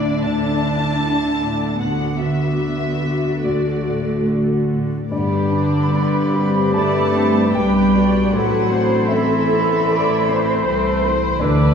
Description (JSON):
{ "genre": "cinematic, emotional film score for orchestra", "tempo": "70-79 BPM", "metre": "4/4", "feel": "rubato", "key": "G major", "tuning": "A4 = 440 Hz", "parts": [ { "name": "warm chamber violin section", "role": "melody", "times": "0.0-11.7 s", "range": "D5 to A5", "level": "-28 LUFS", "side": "left 4 dB", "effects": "none" }, { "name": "dark symphonic viola section", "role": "accompaniment", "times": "0.0-11.7 s", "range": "A3 to D5", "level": "-23 LUFS", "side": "right 2 dB", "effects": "none" }, { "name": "warm grand piano", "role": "accompaniment", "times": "0.0-11.7 s", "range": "D2 to A5", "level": "-23 LUFS", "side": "left 3 dB", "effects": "none" }, { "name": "warm symphonic cello section", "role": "bass", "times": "0.0-11.7 s", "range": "D3 to A3", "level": "-22 LUFS", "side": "right 2 dB", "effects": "none" }, { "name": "bright clarinet", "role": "second line", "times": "5.1-11.7 s", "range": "E4 to G4", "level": "-27 LUFS", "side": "equal", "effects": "none" }, { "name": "bright silver concert flute", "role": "second line", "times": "5.1-11.7 s", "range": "B5 to D6", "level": "-26 LUFS", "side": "right 5 dB", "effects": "none" }, { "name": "dark cor anglais", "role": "second line", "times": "5.1-11.7 s", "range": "A4 to C5", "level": "-27 LUFS", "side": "right 1 dB", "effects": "none" }, { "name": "warm symphonic violin section", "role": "second line", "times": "5.1-11.7 s", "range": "A3 to C5", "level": "-25 LUFS", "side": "left 3 dB", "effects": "none" }, { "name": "dark French horn section", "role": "sustained chords", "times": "5.1-11.7 s", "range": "E3 to B4", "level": "-24 LUFS", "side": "left 4 dB", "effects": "none" }, { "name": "clear symphonic double bass section", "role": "bass", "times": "5.1-11.7 s", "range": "A1 to G2", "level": "-23 LUFS", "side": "right 1 dB", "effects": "none" } ], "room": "wet scoring stage reverb, RT60 1.6 s", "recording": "heard from further back in the room, small room ambience", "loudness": "-16 LUFS", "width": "side -7 dB against mid", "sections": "0.0-5.1 A section; 5.1-11.7 A section", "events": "none", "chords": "0.0 Dsus2; 1.8 Bm/D; 3.4 D; 5.1 G; 8.3 Amadd9", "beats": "0.22 1.01 | 1.81 2.61 3.44 4.28 | 5.12 5.92 6.75 7.55 | 8.33 9.10 9.89 10.66 | 11.42" }